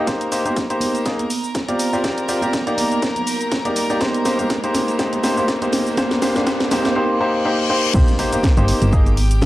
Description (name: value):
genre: piano house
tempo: 122 BPM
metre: 4/4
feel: swing 56% on 16ths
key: C minor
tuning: A4 = 440 Hz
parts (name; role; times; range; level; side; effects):
- rich chamber violin section; sustained chords; 0.0-9.5 s; G4 to Bb5; -29 LUFS; equal; sidechain pumping, cassette tape
- clear upright piano; riff; 0.0-9.1 s; Bb3 to Eb5; -20 LUFS; equal; sidechain pumping, low-pass filter, cassette tape
- swell, riser, reverse cymbal and impact; sound effects; 1.9-9.5 s; none; -28 LUFS; left 1 dB; none
- electronic kick drum; drums; 0.1-9.5 s; none; -19 LUFS; equal; high-pass filter on kick, high-pass filter on room
- house drum kit; drums; 0.1-9.5 s; crash cymbal, hi-hat, shaker, snare drum; -23 LUFS; equal; overdrive
- congas and tambourine; percussion; 0.1-9.5 s; none; -28 LUFS; right 3 dB; none
- solid FM bass; bass; 7.9-9.5 s; G1 to C2; -16 LUFS; equal; sidechain pumping
room: light reverb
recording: home recording on cassette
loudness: -16 LUFS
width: side -16 dB against mid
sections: 0.1-7.9 A section; 7.9-9.5 B section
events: build-up 0.1-7.9; drum fill 0.1-7.0; riser 1.9-7.0; reverse cymbal 7.0-7.9; drop 7.9-9.5; impact 7.9-9.5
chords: 0.1 Cm7; 1.1 Absus2; 1.8 G7sus4; 2.8 Ebmaj7; 4.0 Eb6/Bb; 5.7 Gsus4; 6.7 Eb; 7.9 Cm7; 8.9 Absus2